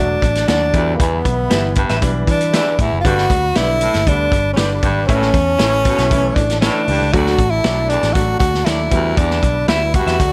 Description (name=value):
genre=uptempo 1960s-style soul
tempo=117 BPM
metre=4/4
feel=straight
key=unclear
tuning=A4 = 440 Hz
part: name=breathy tenor saxophone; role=melody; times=0.0-10.3 s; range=Bb3 to F#4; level=-20 LUFS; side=equal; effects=plate reverb
part: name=clear concert grand piano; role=accompaniment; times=0.0-10.3 s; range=D3 to G4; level=-27 LUFS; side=equal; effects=plate reverb
part: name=mellow tonewheel organ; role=sustained chords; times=0.0-10.3 s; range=G3 to B5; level=-33 LUFS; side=equal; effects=none
part: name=vintage muted picked electric bass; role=bass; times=0.0-10.3 s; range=E1 to E3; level=-23 LUFS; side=equal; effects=none
part: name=vintage drum kit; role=drums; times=0.2-10.3 s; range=hi-hat, kick drum, snare drum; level=-21 LUFS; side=equal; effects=none
part: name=electric guitar through a small old amp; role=stabs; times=0.5-10.2 s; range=E4 to E5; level=-28 LUFS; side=equal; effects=plate reverb
part: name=breathy baritone saxophone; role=riff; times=0.7-10.2 s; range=D2 to B2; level=-25 LUFS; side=equal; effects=none
room=light reverb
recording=none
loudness=-16 LUFS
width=mono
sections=0.0-10.3 A section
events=none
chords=0.0 D; 0.7 Em; 3.0 G; 5.1 A; 7.1 D; 8.9 Em